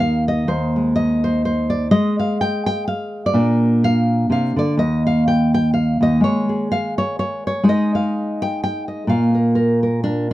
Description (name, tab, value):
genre	folk, solo fingerstyle acoustic guitar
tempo	126 BPM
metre	3/4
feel	swing 57% on 8ths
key	unclear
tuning	A4 = 441 Hz
part	nylon-string guitar	solo	0.0-10.3 s	Eb2 to G5	-16 LUFS	equal	none
room	little or no reverb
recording	dry, close 1970s-style studio recording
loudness	-16 LUFS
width	side -15 dB against mid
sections	0.0-10.3 A section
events	none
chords	0.5 Ab/Eb; 1.9 N.C.; 3.3 Bb; 4.8 N.C.; 7.7 Ab5; 9.1 Bb